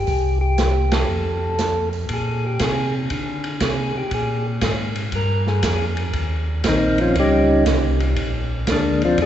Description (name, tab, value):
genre	soul jazz organ trio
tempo	119 BPM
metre	4/4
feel	swing 67% on 8ths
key	Bb mixolydian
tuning	A4 = 440 Hz
part	percussive tonewheel organ	melody	0.0-9.3 s	D3 to Bb4	-21 LUFS	left 1 dB	slow rotary speaker
part	mellow tonewheel organ	bass	0.0-9.3 s	Bb1 to D3	-22 LUFS	equal	chorus vibrato, slow rotary speaker
part	open jazz drum kit	drums	0.1-9.3 s	hi-hat, kick drum, ride cymbal, snare drum	-25 LUFS	right 1 dB	none
room	wet church reverb, RT60 3.3 s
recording	recorded in a church or concert hall, nothing above 8.0 kHz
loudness	-18 LUFS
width	side -10 dB against mid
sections	0.0-2.1 A section; 2.1-9.3 B section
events	band accent 0.8; tonewheel organ solo 2.1-9.3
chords	0.1 C5; 1.1 F; 2.1 Bb13; 6.1 Eb13; 8.2 Bb9